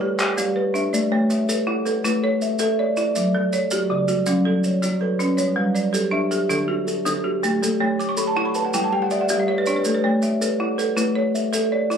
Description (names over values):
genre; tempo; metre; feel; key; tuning
southern african traditional, mbira-style interlocking cycle; 108 BPM (dotted quarters); 12/8; straight; A mixolydian; A4 = 440 Hz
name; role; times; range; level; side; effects
folk marimba with hard mallets; arpeggios; 0.0-12.0 s; C#3 to D6; -22 LUFS; right 2 dB; none
kalimba; arpeggios; 0.0-12.0 s; D3 to F#5; -22 LUFS; left 1 dB; none
maracas; percussion; 0.2-12.0 s; none; -30 LUFS; right 2 dB; none
room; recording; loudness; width
light reverb; recorded on a phone in the room, club reverb; -19 LUFS; side -7 dB against mid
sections
0.9-12.0 A section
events
marimba fill 7.8-9.8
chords
0.0 G; 0.9 A; 3.2 F#m; 5.4 G; 6.5 D; 7.6 A; 8.7 G; 9.8 A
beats
0.37 | 0.93 1.49 2.04 2.60 | 3.16 3.71 4.27 4.83 | 5.39 5.94 6.50 7.06 | 7.62 8.18 8.73 9.29 | 9.85 10.41 10.97 11.53